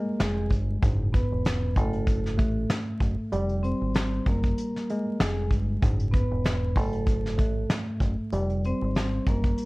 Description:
hip hop, boom-bap hip-hop; 96 BPM; 4/4; swing 55% on 16ths; A4 = 440 Hz
vibraphone with medium mallets; melody; 0.0-9.7 s; Ab3 to C5; -32 LUFS; equal; high-pass filter, low-pass filter
mellow tine electric piano; accompaniment; 0.0-9.7 s; G#2 to A3; -30 LUFS; equal; medium stereo tremolo, cassette tape, high-pass filter, low-pass filter
deep dub fingered electric bass; bass; 0.2-9.5 s; E1 to A1; -28 LUFS; equal
soft brush drum kit; drums; 0.2-9.7 s; hi-hat, kick drum, rim click, snare drum; -26 LUFS; equal
light reverb; worn, warbling old tape, cassette tape, vinyl crackle, warbly pitch drift; -24 LUFS; side -22 dB against mid
0.0-9.7 A section
0.0 Fmadd9; 0.8 F#m9; 3.3 Fmadd9; 5.8 F#m9; 8.3 Fmadd9

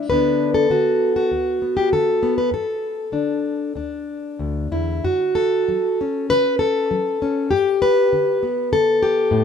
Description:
folk, solo fingerstyle acoustic guitar; 98 BPM; 4/4; rubato; A4 = 440 Hz
fingerpicked plugged-in steel-string acoustic guitar; solo; 0.0-9.4 s; D2 to B4; -17 LUFS; left 1 dB
light reverb; minimal, uncompressed stereo recording; -17 LUFS; side -7 dB against mid
0.0-5.0 A section; 5.0-9.4 B section
0.1 Bm7/D; 2.5 Gsus2; 3.8 Dsus2; 5.0 F#m; 7.5 G

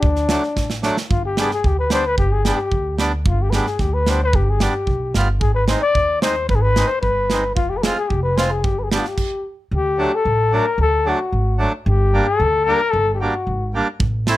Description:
klezmer; 112 BPM; 2/4; straight; G phrygian dominant; A4 = 440 Hz
breathy cornet; melody; 0.0-13.7 s; D4 to D5; -20 LUFS; left 3 dB; slapback echo
upright bass; bass; 0.0-14.3 s; F1 to Eb2; -20 LUFS; equal
modern studio drum kit; drums; 0.0-9.3, 14.0-14.4 s; crash cymbal, kick drum, snare drum; -22 LUFS; right 2 dB
accordion; accompaniment; 0.3-14.4 s; F#3 to F4; -22 LUFS; right 2 dB
light reverb; close, detailed microphones; -16 LUFS; side -16 dB against mid
0.0-1.1 A section; 1.1-9.7 B section; 9.7-14.4 C section
drum fill 0.6-1.1; stop 9.2-9.7
0.0 D; 1.1 G; 5.4 Ab; 7.6 Fm; 8.6 G; 9.2 N.C.; 9.7 D; 11.9 Gm

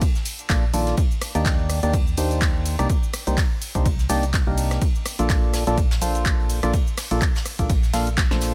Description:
piano house; 125 BPM; 4/4; swing 56% on 16ths; Bb major; A4 = 438 Hz
percussive organ stab; riff; 0.0-8.5 s; Bb2 to F5; -28 LUFS; equal; chorus, sidechain pumping
electronic kick drum; drums; 0.0-8.3 s; -24 LUFS; equal
house drum kit; drums; 0.0-8.5 s; handclaps, hi-hat, rim click, shaker, snare drum; -31 LUFS; equal
soft brush drum kit; drums; 0.0-8.5 s; hi-hat, ride cymbal, snare drum; -39 LUFS; equal; sidechain pumping on cymbals, high-pass filter on cymbals, sidechain pumping on hats, high-pass filter on hats, high-pass filter on snare, high-pass filter on room
tambourine; percussion; 0.0-8.5 s; -45 LUFS; equal
organ-like FM bass; bass; 0.5-8.5 s; Bb1 to Eb2; -26 LUFS; equal; tube saturation, sidechain pumping
small room ambience; -22 LUFS; mono
0.0-8.5 A section
drum fill 8.2-8.5
0.0 Bbmaj7; 1.0 Cm9; 4.8 Bbmaj7

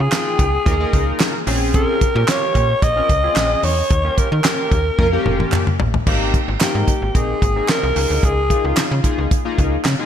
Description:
early-eighties boogie funk; 111 BPM; 4/4; straight; A4 = 436 Hz
raspy alto saxophone; melody; 0.0-9.2 s; F4 to Eb5; -20 LUFS; equal; slapback echo, tape echo
slap-like FM bass; bass; 0.0-10.0 s; F1 to Eb3; -20 LUFS; equal
chorused polysynth; accompaniment; 0.1-10.1 s; Bb3 to G5; -23 LUFS; left 3 dB; slapback echo
damped 70s drum kit; drums; 0.1-10.0 s; crash cymbal, handclaps, hi-hat, kick drum, snare drum, toms; -19 LUFS; equal
group handclap; percussion; 0.1-10.0 s; -29 LUFS; right 5 dB
moderate recital hall reverb, RT60 1.4 s, studio ambience; big arena sound; -15 LUFS; side -9 dB against mid
0.0-6.1 A section; 6.1-10.1 B section
drum fill 5.0-6.1
0.0 Db6; 1.5 Bbm7; 3.9 Eb9; 6.1 Abmaj9; 8.0 Db6

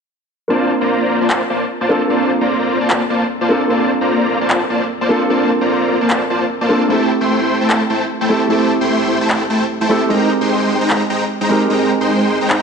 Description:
future bass; 150 BPM; 4/4; swing 55% on 16ths, half-time; Bb lydian; A4 = 440 Hz
dark concert grand piano; accompaniment; 0.5-12.6 s; Ab3 to Bb4; -17 LUFS; right 2 dB; ping-pong delay
supersaw chords; riff; 0.5-12.6 s; Ab3 to C6; -16 LUFS; equal; analog chorus, cassette tape, low-pass filter, ping-pong delay
electronic handclaps; drums; 1.3-12.6 s; -19 LUFS; equal; overdrive
moderate lush hall reverb, RT60 1.6 s, studio reverb; nothing above 10.8 kHz; -13 LUFS; side -6 dB against mid
0.5-12.6 A section
0.5 Bbmaj9; 6.9 Am7; 10.1 Abmaj9

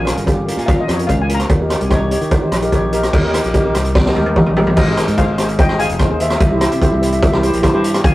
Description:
calypso; 147 BPM; 4/4; straight; Ab major; A4 = 441 Hz
steel pan; melody; 0.0-1.9, 4.8-8.1 s; C5 to Bb5; -22 LUFS; left 2 dB; digital delay
steel pan; accompaniment; 0.0-8.0 s; Db4 to Db5; -19 LUFS; equal
modern bright fingered electric bass; bass; 0.0-8.1 s; F1 to Eb3; -20 LUFS; equal
street-band drum kit; drums; 0.1-8.1 s; crash cymbal, hi-hat, kick drum, rim click, snare drum, toms; -15 LUFS; equal
cowbell; percussion; 0.1-4.5 s; -29 LUFS; right 2 dB
moderate small room reverb, RT60 0.5 s; rough rehearsal-room recording, tube saturation; -13 LUFS; side -17 dB against mid
0.0-3.1 A section; 3.1-4.8 B section; 4.8-8.1 C section
steel pan solo 0.0-3.1; drum fill 4.0-4.8
0.0 Bbm; 1.5 Eb; 4.8 Ab; 6.4 C7

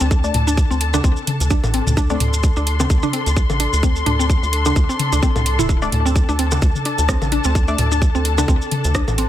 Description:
minimal techno; 129 BPM; 4/4; swing 56% on 16ths; A4 = 439 Hz
mallet-like synth pluck; riff; 0.0-9.2 s; C4 to E4; -24 LUFS; equal; chorus, sidechain pumping, ping-pong delay
rubbery square bass; bass; 0.0-9.2 s; D1 to D2; -20 LUFS; equal; sidechain pumping
maracas; percussion; 0.0-9.2 s; -28 LUFS; right 1 dB
bubbling stepped-filter texture; texture; 0.0-9.3 s; A4; -31 LUFS; left 1 dB; chorus, built-in reverb, sidechain pumping
muted studio string section; texture; 0.0-9.3 s; D4 to C6; -25 LUFS; left 4 dB; sidechain pumping
electronic kick drum; drums; 0.1-9.1 s; -17 LUFS; equal; overdrive
filtered dub chord stab; stabs; 0.2-2.2, 5.8-7.8 s; A3 to D5; -26 LUFS; left 4 dB; chorus, ping-pong delay
booming analog drum machine; drums; 0.3-9.3 s; hi-hat, rim click; -24 LUFS; right 2 dB
electronic toms and bongos; percussion; 0.3-9.2 s; -24 LUFS; left 2 dB
little or no reverb; -15 LUFS; side -12 dB against mid
0.0-9.3 A section
0.0 D5

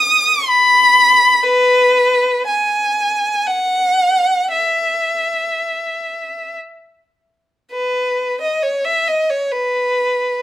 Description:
classical, free, expressive piece for unaccompanied violin; 47-68 BPM; 3/4; rubato; E major; A4 = 440 Hz
rich violin; solo; 0.0-10.4 s; B4 to D#6; -13 LUFS; equal
light reverb; -13 LUFS; side -13 dB against mid
0.0-7.7 A section; 7.7-10.4 B section

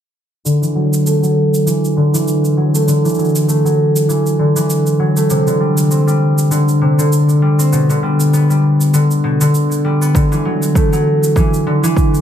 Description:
folktronica; 99 BPM; 4/4; swing 56% on 16ths; D mixolydian; A4 = 443 Hz
concert harp; arpeggios; 0.4-12.2 s; B2 to C4; -12 LUFS; equal; low-pass filter, digital delay
shaker; drums; 0.5-12.2 s; -25 LUFS; right 2 dB; overdrive
electronic kick drum; drums; 10.1-12.1 s; -15 LUFS; right 1 dB; overdrive
moderate studio reverb, RT60 0.5 s; -11 LUFS; side -9 dB against mid
0.5-12.2 A section
filter sweep on harp 0.5-12.2
0.5 Dadd9; 5.3 Csus2; 7.7 G; 10.1 Dadd9

